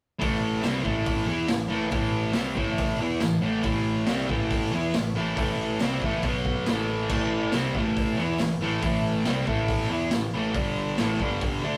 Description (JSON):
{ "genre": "garage rock duo or trio", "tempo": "139 BPM", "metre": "4/4", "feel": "straight", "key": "A minor", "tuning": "A4 = 440 Hz", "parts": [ { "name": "fuzz guitar", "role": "riff", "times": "0.2-11.8 s", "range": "G2 to E4", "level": "-28 LUFS", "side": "equal", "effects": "distortion" }, { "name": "fuzz fingered electric bass", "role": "bass", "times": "0.2-11.8 s", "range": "G1 to E2", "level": "-38 LUFS", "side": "equal", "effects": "overdrive, tube saturation" }, { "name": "raw garage drum kit", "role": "drums", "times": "0.2-11.5 s", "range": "crash cymbal, hi-hat, kick drum, snare drum", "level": "-32 LUFS", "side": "equal", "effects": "none" }, { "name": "tambourine", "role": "percussion", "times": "0.6-11.1 s", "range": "none", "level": "-48 LUFS", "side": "equal", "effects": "none" } ], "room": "moderate booth ambience, RT60 0.2 s", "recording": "rough rehearsal-room recording", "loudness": "-26 LUFS", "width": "mono", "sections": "0.2-11.8 A section", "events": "none", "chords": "0.2 Am; 6.2 B5; 6.7 Am; 10.5 G5", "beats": "| 0.21 0.64 1.07 1.50 | 1.93 2.36 2.79 3.21 | 3.65 4.08 4.51 4.94 | 5.37 5.80 6.23 6.66 | 7.09 7.53 7.96 8.39 | 8.82 9.25 9.68 10.11 | 10.55 10.98 11.41" }